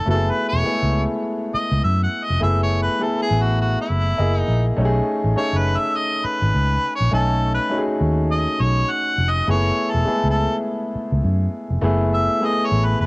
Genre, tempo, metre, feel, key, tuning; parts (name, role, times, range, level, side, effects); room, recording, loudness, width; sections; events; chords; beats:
lush 1970s-style soul; 102 BPM; 4/4; swing 58% on 16ths; F# dorian; A4 = 441 Hz
mellow harmonica; melody; 0.0-13.1 s; E4 to F#5; -22 LUFS; equal; cassette tape
warm grand piano; accompaniment; 0.0-13.1 s; G#3 to G#5; -23 LUFS; left 1 dB; cassette tape
vintage muted fingered electric bass; bass; 0.1-13.1 s; E1 to F#2; -19 LUFS; equal
little or no reverb; home recording on cassette; -17 LUFS; side -25 dB against mid
0.0-13.1 A section
harmonica solo 0.0-13.1
0.1 F#m11; 4.2 F#13; 4.8 B13; 9.5 F#m11
| 0.06 0.65 1.24 1.83 | 2.42 3.01 3.60 4.19 | 4.78 5.36 5.95 6.54 | 7.13 7.72 8.30 8.89 | 9.48 10.07 10.65 11.24 | 11.83 12.42 13.00